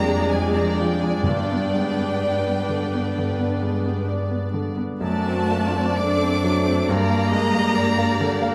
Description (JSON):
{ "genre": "classical, romantic movement for piano and orchestra", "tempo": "60-68 BPM", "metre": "4/4", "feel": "rubato", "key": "unclear", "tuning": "A4 = 436 Hz", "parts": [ { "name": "clear grand piano", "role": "melody", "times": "0.0-8.5 s", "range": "F2 to D5", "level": "-26 LUFS", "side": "equal", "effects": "none" }, { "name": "rich symphonic violin section", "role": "melody", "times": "0.0-8.5 s", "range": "D5 to Eb5", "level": "-35 LUFS", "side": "equal", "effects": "none" }, { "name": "rich chamber violin section", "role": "second line", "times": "0.0-8.5 s", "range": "G5 to D6", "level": "-31 LUFS", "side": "equal", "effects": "none" }, { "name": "rich studio viola section", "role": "accompaniment", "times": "0.0-8.5 s", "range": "A3 to B4", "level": "-31 LUFS", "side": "equal", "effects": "none" }, { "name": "mellow French horn section", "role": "sustained chords", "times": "0.0-8.5 s", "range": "Ab3 to D4", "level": "-32 LUFS", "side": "equal", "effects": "none" }, { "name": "rich chamber cello section", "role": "bass", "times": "0.0-8.5 s", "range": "G3 to D4", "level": "-31 LUFS", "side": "equal", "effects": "none" }, { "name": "rich symphonic double bass section", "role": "bass", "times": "0.0-8.5 s", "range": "F2 to G2", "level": "-30 LUFS", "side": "equal", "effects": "none" }, { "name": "timpani", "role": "percussion", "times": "1.2-2.6 s", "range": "G2", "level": "-30 LUFS", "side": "equal", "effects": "none" } ], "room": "wet scoring stage reverb, RT60 1.6 s", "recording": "none", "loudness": "-22 LUFS", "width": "mono", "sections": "0.0-8.5 A section", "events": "none", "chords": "0.0 Ddim/F; 1.2 G; 5.0 D7/F#; 6.9 Gm", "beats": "0.28 | 1.24 2.20 3.15 4.08 | 5.02 5.99 6.89 7.77" }